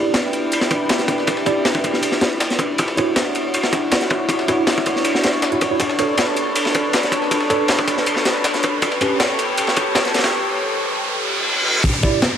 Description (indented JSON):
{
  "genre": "drum and bass, jungle",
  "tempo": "159 BPM",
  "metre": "4/4",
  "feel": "straight",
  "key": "E dorian",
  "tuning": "A4 = 440 Hz",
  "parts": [
    { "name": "lush unison pad", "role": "sustained chords", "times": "0.0-11.8 s", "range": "D4 to C#5", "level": "-21 LUFS", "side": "left 1 dB", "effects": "chorus, vintage 12-bit sampler grit" },
    { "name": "tine electric piano", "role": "stabs", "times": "0.0-9.2, 12.0-12.2 s", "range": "C#4 to D5", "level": "-24 LUFS", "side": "right 3 dB", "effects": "medium stereo tremolo, vintage 12-bit sampler grit, dub echo" },
    { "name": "riser, reverse cymbal and downlifter", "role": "sound effects", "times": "3.4-12.4 s", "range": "none", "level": "-25 LUFS", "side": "equal", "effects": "none" },
    { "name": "breakbeat sampler-style drum kit", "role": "drums", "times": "0.1-12.3 s", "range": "hi-hat, snare drum", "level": "-26 LUFS", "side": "left 1 dB", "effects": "high-pass filter on hats, high-pass filter on snare" },
    { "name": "crunchy breakbeat drum kit", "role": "drums", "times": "0.1-12.3 s", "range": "kick drum, ride cymbal, snare drum", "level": "-19 LUFS", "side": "equal", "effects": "high-pass filter on kick, high-pass filter on cymbals, high-pass filter on snare, high-pass filter on room" }
  ],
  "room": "moderate echo chamber reverb, RT60 1.6 s, small room reverb",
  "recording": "vinyl crackle",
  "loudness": "-16 LUFS",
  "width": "side -8 dB against mid",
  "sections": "0.0-11.8 A section",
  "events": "build-up 0.0-11.8; riser 3.4-11.8; reverse cymbal 11.1-11.8",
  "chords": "0.0 Em7; 2.8 Dmaj9; 5.8 Bm9; 8.8 A9; 11.8 Em7",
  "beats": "0.14 0.52 0.90 | 1.27 1.65 2.03 2.41 | 2.78 3.16 3.54 3.92 | 4.29 4.67 5.05 5.43 | 5.80 6.18 6.56 6.93 | 7.31 7.69 8.07 8.44 | 8.82 9.20 9.58 9.95 | 10.33 10.71 11.09 11.46 | 11.84 12.22"
}